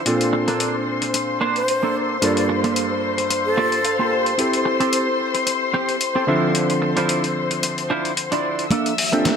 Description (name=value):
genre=nu-disco, nu disco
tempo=111 BPM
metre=4/4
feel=swing 55% on 16ths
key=D minor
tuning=A4 = 441 Hz
part: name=warm electric grand piano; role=accompaniment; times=0.0-9.4 s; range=G2 to E5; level=-23 LUFS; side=right 1 dB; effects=sidechain pumping, digital delay
part: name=muted studio string section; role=sustained chords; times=0.0-9.4 s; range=C5 to E6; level=-23 LUFS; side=left 4 dB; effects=sidechain pumping
part: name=dusty soul sampler-style drum kit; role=drums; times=0.1-9.4 s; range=hi-hat, snare drum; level=-24 LUFS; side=left 4 dB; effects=none
part: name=semi-hollow electric guitar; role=riff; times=0.3-9.4 s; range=Bb3 to A5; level=-24 LUFS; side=right 3 dB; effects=lush chorus, low-pass filter, digital delay
part: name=breathy mellow silver concert flute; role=melody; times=1.6-4.2 s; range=A4 to D5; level=-24 LUFS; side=equal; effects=low-pass filter, ping-pong delay
part: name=kick drum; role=drums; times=8.7-9.4 s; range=none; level=-23 LUFS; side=equal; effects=high-pass filter on kick, high-pass filter on snare, high-pass filter on room
part: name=riser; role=sound effects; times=8.9-9.4 s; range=none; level=-29 LUFS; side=right 2 dB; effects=none
room=moderate digital room reverb, RT60 1.0 s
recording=none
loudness=-18 LUFS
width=side -6 dB against mid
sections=0.0-8.7 A section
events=clean electric guitar fill 3.3-4.4; riser 8.9-9.4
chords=0.1 Bbmaj7; 2.2 Gm9; 4.4 Am7; 6.3 Dm9; 8.7 Bbmaj7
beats=| 0.07 0.60 1.15 1.69 | 2.23 2.77 3.31 3.85 | 4.39 4.93 5.47 6.01 | 6.55 7.09 7.63 8.17 | 8.71 9.25